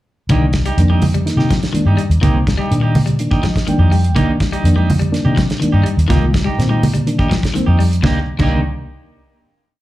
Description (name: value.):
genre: afrobeat.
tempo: 124 BPM.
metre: 4/4.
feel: straight.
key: C minor.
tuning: A4 = 443 Hz.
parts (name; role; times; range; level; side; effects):
mellow reed electric piano; accompaniment; 0.3-8.6 s; Eb3 to G5; -21 LUFS; equal; fast tremolo, plate reverb.
electric guitar at the edge of break-up; arpeggios; 0.3-8.5 s; C3 to G3; -24 LUFS; left 7 dB; slapback echo.
electric guitar at the edge of break-up; stabs; 0.3-8.6 s; Bb3 to G4; -24 LUFS; right 4 dB; warbly pitch drift, plate reverb, slapback echo.
vintage muted fingered electric bass; bass; 0.3-8.6 s; C2 to C3; -15 LUFS; equal; none.
damped 70s drum kit; drums; 0.3-8.5 s; crash cymbal, hi-hat, kick drum, snare drum; -20 LUFS; equal; none.
congas; percussion; 0.3-8.5 s; none; -20 LUFS; right 1 dB; none.
room: light reverb.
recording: live gig heard through the venue's PA, club reverb.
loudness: -12 LUFS.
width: side -16 dB against mid.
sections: 0.3-8.0 groove; 8.0-9.8 final chord.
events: reed electric piano fill 3.2-4.2.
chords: 0.3 Cm7.